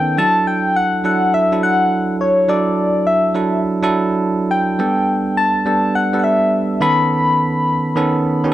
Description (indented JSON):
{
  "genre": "R&B",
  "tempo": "104 BPM",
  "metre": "4/4",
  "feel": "swing 66% on 16ths",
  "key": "unclear",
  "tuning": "A4 = 440 Hz",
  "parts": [
    { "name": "soft struck synth lead", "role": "melody", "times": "0.0-8.5 s", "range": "C#5 to B5", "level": "-16 LUFS", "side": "left 2 dB", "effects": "chorus, slapback echo" },
    { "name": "bell-like tine electric piano", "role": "accompaniment", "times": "0.0-8.5 s", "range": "D#3 to A4", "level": "-17 LUFS", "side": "right 2 dB", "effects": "none" }
  ],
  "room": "light reverb, digital ambience",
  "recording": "faint mains hum",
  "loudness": "-14 LUFS",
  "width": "side -14 dB against mid",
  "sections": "0.0-8.5 A section",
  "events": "none",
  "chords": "0.2 E9sus4; 4.8 A9sus4; 6.8 B9"
}